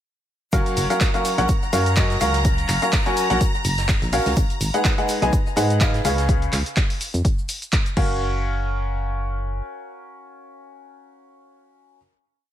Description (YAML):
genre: piano house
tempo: 125 BPM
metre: 4/4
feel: swing 55% on 16ths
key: F# major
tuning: A4 = 440 Hz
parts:
  - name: string machine, violins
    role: sustained chords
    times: 0.5-6.3 s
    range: A#5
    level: -29 LUFS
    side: equal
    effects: ensemble chorus, sidechain pumping
  - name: clear grand piano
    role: riff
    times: 0.5-12.0 s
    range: C#3 to G#5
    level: -24 LUFS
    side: equal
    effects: sidechain pumping, ping-pong delay
  - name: solid FM bass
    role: bass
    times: 0.5-9.6 s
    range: F#1 to G#2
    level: -23 LUFS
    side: equal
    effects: sidechain pumping
  - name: electronic kick drum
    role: drums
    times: 0.5-8.1 s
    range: none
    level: -21 LUFS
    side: equal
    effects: none
  - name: natural country drum kit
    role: drums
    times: 0.5-6.3 s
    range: hi-hat, shaker, snare drum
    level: -35 LUFS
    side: right 2 dB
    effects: none
  - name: punchy analog drum machine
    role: drums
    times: 0.5-8.1 s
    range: crash cymbal, handclaps, hi-hat, shaker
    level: -27 LUFS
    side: equal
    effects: none
room: small room ambience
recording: none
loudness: -18 LUFS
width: side -11 dB against mid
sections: 0.5-8.2 drop; 8.2-12.0 final hit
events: drop 0.5-8.2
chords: 0.5 F#maj7; 4.4 G#m7; 6.0 C#7; 8.0 F#maj7